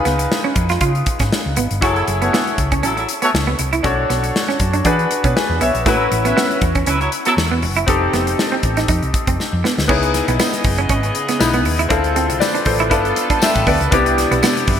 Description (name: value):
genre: polished 1980s jazz-funk pop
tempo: 119 BPM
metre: 4/4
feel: swing 54% on 16ths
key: unclear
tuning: A4 = 440 Hz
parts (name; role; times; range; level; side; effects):
- bright grand piano; accompaniment; 0.0-14.8 s; B3 to G5; -19 LUFS; left 3 dB; analog chorus
- clean electric guitar; riff; 0.1-14.7 s; A3 to F#4; -22 LUFS; right 6 dB; lush chorus
- hollow-body short-scale fingered electric bass; bass; 0.1-14.8 s; F1 to E3; -21 LUFS; equal; none
- modern studio drum kit; drums; 0.1-14.8 s; crash cymbal, hi-hat, kick drum, snare drum; -20 LUFS; left 1 dB; gated reverb
- warm horn section; second line; 1.8-7.3 s; F#3 to E5; -20 LUFS; equal; none
- warm studio string section; sustained chords; 9.9-14.8 s; C3 to D#5; -25 LUFS; right 1 dB; none
- tambourine; percussion; 10.4-14.6 s; none; -28 LUFS; left 7 dB; none
room: moderate lush hall reverb, RT60 2.2 s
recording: bright 1980s-style digital production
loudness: -14 LUFS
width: side -8 dB against mid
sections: 0.0-9.9 A section; 9.9-14.8 B section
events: drum fill 9.4-9.9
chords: 0.0 C#7; 1.8 F#m7; 3.8 Bm9; 4.9 E9; 5.9 A69; 7.9 F9; 9.9 C#m9; 11.9 Dm9; 12.9 G9; 13.9 Cmaj9